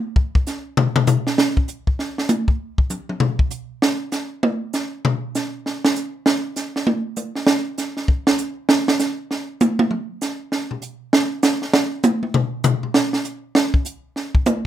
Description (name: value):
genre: jazz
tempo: 197 BPM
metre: 4/4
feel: swing 62% on 8ths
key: none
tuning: none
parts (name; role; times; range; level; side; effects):
- compact cocktail drum kit; drums; 0.2-14.6 s; hi-hat, kick drum, snare drum, toms; -18 LUFS; equal; none
room: moderate small room reverb, RT60 0.5 s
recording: minimal, uncompressed stereo recording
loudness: -18 LUFS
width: side -11 dB against mid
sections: 0.0-1.4 A section; 1.4-14.7 A section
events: drum solo 0.0-1.4, 1.4-14.7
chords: none